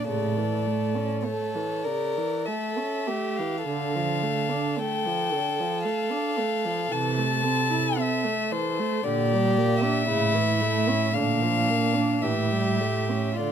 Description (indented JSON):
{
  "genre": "classical, slow romantic movement for string quartet",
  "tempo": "49-58 BPM",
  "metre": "3/4",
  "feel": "rubato",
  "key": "unclear",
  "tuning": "A4 = 436 Hz",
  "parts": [
    { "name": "warm violin", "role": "melody", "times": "0.0-13.5 s", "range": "C5 to A5", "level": "-28 LUFS", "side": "left 6 dB", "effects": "none" },
    { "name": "rich violin", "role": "second line", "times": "0.0-13.5 s", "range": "D4 to Bb4", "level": "-30 LUFS", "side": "equal", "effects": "none" },
    { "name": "dark viola", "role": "accompaniment", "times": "0.0-13.5 s", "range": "C#3 to E4", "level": "-30 LUFS", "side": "right 5 dB", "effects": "none" },
    { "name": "warm cello", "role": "bass", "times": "0.1-13.5 s", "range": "A2 to D3", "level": "-27 LUFS", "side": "right 4 dB", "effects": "none" }
  ],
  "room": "little or no reverb",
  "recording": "close, detailed microphones",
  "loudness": "-23 LUFS",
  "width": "side -8 dB against mid",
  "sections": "0.0-13.5 A section",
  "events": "none",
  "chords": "0.1 A; 3.7 Dm; 6.9 Am/C; 9.0 Gm/Bb; 10.1 A; 11.2 Bb; 12.2 A7",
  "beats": "| 0.08 1.26 2.48 | 3.67 4.78 5.85 | 6.92 7.98 9.05 | 10.09 11.15 12.22 | 13.39"
}